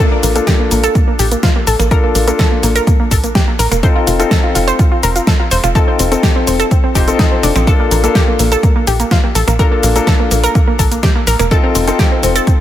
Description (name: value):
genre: progressive house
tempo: 125 BPM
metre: 4/4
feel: straight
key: Bb major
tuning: A4 = 440 Hz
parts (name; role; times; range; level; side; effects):
- analog pluck; arpeggios; 0.0-12.5 s; Bb3 to C5; -17 LUFS; right 1 dB; chorus, sidechain pumping, ping-pong delay
- bright grand piano; stabs; 0.0-12.6 s; Bb3 to C5; -18 LUFS; left 4 dB; sidechain pumping, low-pass filter, ping-pong delay
- big-room dance drum kit; drums; 0.0-12.6 s; finger snaps, hi-hat, shaker, snare drum; -19 LUFS; equal; sidechain pumping on hats, sidechain pumping on perc
- tight sequencer bass; bass; 0.2-12.4 s; F1 to Bb1; -16 LUFS; equal; sidechain pumping
- electronic kick drum; drums; 0.5-12.6 s; none; -12 LUFS; equal; overdrive
room: little or no reverb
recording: none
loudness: -10 LUFS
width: side -12 dB against mid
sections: 0.0-12.6 A section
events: filter sweep on grand piano 0.0-12.6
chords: 0.0 Bbmaj7; 3.8 F7; 7.7 Bbmaj7; 11.5 F7